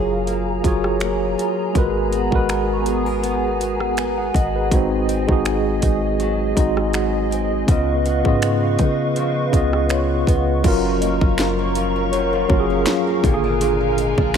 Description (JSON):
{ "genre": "contemporary R&B", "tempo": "81 BPM", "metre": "4/4", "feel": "swing 54% on 16ths", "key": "G# dorian", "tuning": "A4 = 438 Hz", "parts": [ { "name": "bright tine electric piano", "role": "accompaniment", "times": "0.0-14.4 s", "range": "A#2 to G#5", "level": "-20 LUFS", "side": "right 1 dB", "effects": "medium stereo tremolo" }, { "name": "hollow soft pad", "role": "sustained chords", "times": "0.0-14.4 s", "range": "B3 to C#6", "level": "-26 LUFS", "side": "equal", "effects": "ensemble chorus" }, { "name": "picked old ladder-braced acoustic guitar", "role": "arpeggios", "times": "0.0-14.4 s", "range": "F#2 to A#4", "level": "-28 LUFS", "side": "left 2 dB", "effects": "tape echo" }, { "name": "warm 808-style bass", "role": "bass", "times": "0.0-14.4 s", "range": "F#1 to C#3", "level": "-24 LUFS", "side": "equal", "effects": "none" }, { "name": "celesta", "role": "texture", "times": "0.0-14.4 s", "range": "G#4 to D#6", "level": "-31 LUFS", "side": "equal", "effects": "none" }, { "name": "trap drum kit", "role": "drums", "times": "0.3-14.3 s", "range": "crash cymbal, finger snaps, hi-hat, kick drum, rim click, snare drum", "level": "-21 LUFS", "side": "equal", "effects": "none" } ], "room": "little or no reverb", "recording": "none", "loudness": "-17 LUFS", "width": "side -7 dB against mid", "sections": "0.0-10.6 A section; 10.6-14.4 B section", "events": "none", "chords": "0.0 F#maj9; 1.8 G#m9; 4.7 G#7; 7.7 C#9; 10.6 F#maj7; 13.2 A#7" }